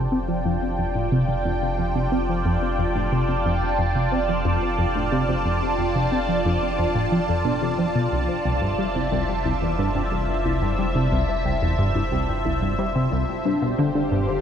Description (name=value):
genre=ambient, sequencer-driven space music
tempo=90 BPM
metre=4/4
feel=straight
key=F major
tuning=A4 = 440 Hz
part: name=lush unison pad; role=sustained chords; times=0.0-14.4 s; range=F4 to A5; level=-24 LUFS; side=equal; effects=chorus, phaser
part: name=soft round pluck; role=arpeggios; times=0.0-14.4 s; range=D4 to A5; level=-33 LUFS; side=left 2 dB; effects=none
part: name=tight sequenced synth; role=riff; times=0.0-14.3 s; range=C2 to C4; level=-23 LUFS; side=equal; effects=chorus, ping-pong delay
part: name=round analog bass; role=bass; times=0.0-14.4 s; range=F1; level=-30 LUFS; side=equal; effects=none
room=wet cathedral reverb, RT60 5.2 s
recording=in a vast, echoing space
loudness=-20 LUFS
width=side -8 dB against mid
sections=0.0-14.4 A section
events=none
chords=0.0 F6; 8.1 C6/F; 13.5 G7sus4/F